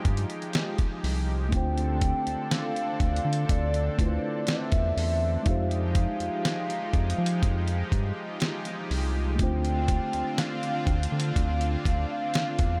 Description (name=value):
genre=contemporary R&B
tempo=61 BPM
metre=4/4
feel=straight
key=unclear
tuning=A4 = 440 Hz
part: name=hollow clarinet-like synth lead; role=melody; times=0.0-12.8 s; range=D5 to G5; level=-35 LUFS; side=equal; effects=chorus, analog delay
part: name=mellow tine electric piano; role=accompaniment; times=0.0-12.8 s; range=Ab3 to C5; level=-38 LUFS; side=equal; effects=none
part: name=lush unison pad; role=sustained chords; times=0.0-12.8 s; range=D3 to A4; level=-36 LUFS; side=equal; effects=chorus, sidechain pumping
part: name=dusty soul sampler-style drum kit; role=drums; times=0.0-12.8 s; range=hi-hat, kick drum, snare drum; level=-31 LUFS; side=equal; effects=none
part: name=round analog bass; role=bass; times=0.1-12.8 s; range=C2 to F3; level=-30 LUFS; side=equal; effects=none
room=moderate huge ambient reverb, RT60 8.2 s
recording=dreamy mix soaked in reverb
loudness=-27 LUFS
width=mono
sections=0.0-12.8 A section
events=none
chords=0.0 Fm9; 1.5 Dm9; 5.5 Fm9; 9.4 Dm7